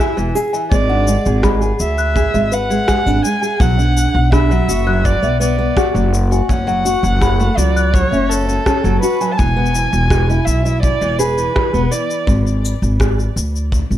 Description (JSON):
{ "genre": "folktronica", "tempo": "83 BPM", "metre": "4/4", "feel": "straight", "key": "unclear", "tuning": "A4 = 438 Hz", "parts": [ { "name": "dark violin", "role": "melody", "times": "0.0-12.3 s", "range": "A4 to A5", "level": "-21 LUFS", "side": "right 2 dB", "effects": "plate reverb, ping-pong delay" }, { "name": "celesta", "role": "second line", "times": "0.0-9.4 s", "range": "E5 to F#6", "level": "-25 LUFS", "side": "left 4 dB", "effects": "plate reverb, ping-pong delay" }, { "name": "fingerpicked steel-string acoustic guitar", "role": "arpeggios", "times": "0.0-12.3 s", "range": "E3 to B4", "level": "-20 LUFS", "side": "equal", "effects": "plate reverb, ping-pong delay" }, { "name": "electronic shaker and rim click", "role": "drums", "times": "0.0-14.0 s", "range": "none", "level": "-23 LUFS", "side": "equal", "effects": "overdrive" }, { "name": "upright bass", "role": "bass", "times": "0.2-14.0 s", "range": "E1 to D2", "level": "-16 LUFS", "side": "equal", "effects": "none" }, { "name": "kick drum", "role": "drums", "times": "0.7-13.9 s", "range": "none", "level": "-18 LUFS", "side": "equal", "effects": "none" } ], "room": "light reverb", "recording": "none", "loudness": "-13 LUFS", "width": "side -12 dB against mid", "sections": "0.0-14.0 A section", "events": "none", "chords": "0.0 E; 0.7 G#dim; 3.6 Bm; 6.5 F#m; 9.4 E; 12.3 N.C.", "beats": "| 0.71 1.44 2.16 2.88 | 3.60 4.33 5.05 5.77 | 6.50 7.22 7.94 8.67 | 9.39 10.11 10.83 11.56 | 12.28 13.00 13.73" }